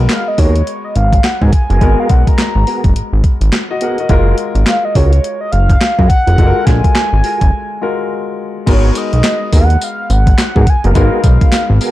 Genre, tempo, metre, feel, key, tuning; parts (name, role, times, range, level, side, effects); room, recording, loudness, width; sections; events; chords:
R&B, new jack swing; 105 BPM; 4/4; swing 60% on 16ths; G# dorian; A4 = 440 Hz
clear baby grand piano; accompaniment; 0.0-11.9 s; G#3 to F#5; -21 LUFS; left 4 dB
fat analog bass; bass; 0.0-11.8 s; E#1 to G#2; -11 LUFS; equal
mellow horn-like synth lead; melody; 0.1-11.9 s; C#5 to A#5; -18 LUFS; equal; chorus
crisp 8-bit digital drum machine; drums; 0.1-11.9 s; crash cymbal, handclaps, hi-hat, kick drum, snare drum, tambourine; -13 LUFS; equal
tonewheel organ; stabs; 0.4-11.9 s; B3 to A#4; -22 LUFS; right 2 dB; chorus vibrato, slow rotary speaker
digital ambience; dark, warm production; -10 LUFS; side -15 dB against mid
0.0-8.7 A section; 8.7-11.9 B section
break 7.5-8.7
0.0 G#m9; 4.1 F#maj9; 8.7 G#m9